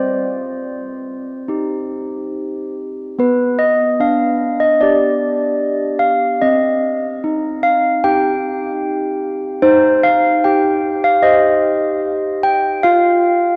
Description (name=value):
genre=classical, tune for handbells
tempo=75 BPM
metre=4/4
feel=straight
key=C minor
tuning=A4 = 440 Hz
part: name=handbells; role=solo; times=0.0-13.6 s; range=B3 to G5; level=-16 LUFS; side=equal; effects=none
room=wet cathedral reverb, RT60 5.1 s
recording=dark, warm production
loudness=-16 LUFS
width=mono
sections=0.0-3.2 A section; 3.2-13.6 B section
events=none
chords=0.0 Cm; 3.2 G/B; 6.4 Cm; 9.6 Cm/Eb; 12.8 N.C.